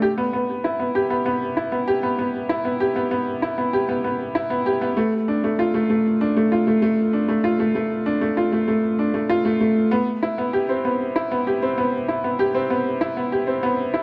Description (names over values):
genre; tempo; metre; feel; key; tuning
electronica; 97 BPM; 4/4; straight; unclear; A4 = 440 Hz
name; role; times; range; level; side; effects
clear upright piano; solo; 0.0-14.0 s; A3 to G4; -22 LUFS; equal; none
room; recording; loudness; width
wet echo chamber reverb, RT60 2.2 s; none; -22 LUFS; mono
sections
0.0-14.0 A section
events
none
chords
none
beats
| 0.02 0.64 1.26 1.87 | 2.49 3.11 3.73 4.35 | 4.97 5.59 6.20 6.82 | 7.44 8.06 8.68 9.30 | 9.92 10.53 11.15 11.77 | 12.39 13.01 13.63